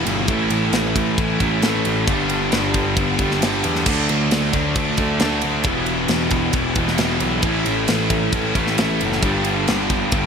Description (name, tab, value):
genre	hard rock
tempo	134 BPM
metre	4/4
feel	straight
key	unclear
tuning	A4 = 440 Hz
part	high-gain distorted guitar	riff	0.0-10.3 s	G2 to E4	-23 LUFS	left 2 dB	distortion
part	overdriven electric guitar	riff	0.0-10.3 s	E2 to D4	-22 LUFS	right 1 dB	none
part	fuzz picked electric bass	bass	0.0-10.3 s	E1 to E2	-24 LUFS	equal	overdrive
part	tight metal drum kit	drums	0.1-10.2 s	crash cymbal, kick drum, ride cymbal, snare drum	-22 LUFS	equal	none
room	light reverb, small room ambience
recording	bright 1980s-style digital production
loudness	-17 LUFS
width	side -6 dB against mid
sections	0.0-10.3 A section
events	none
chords	0.3 A; 2.1 G; 3.9 D; 5.7 Em; 7.4 A; 9.2 G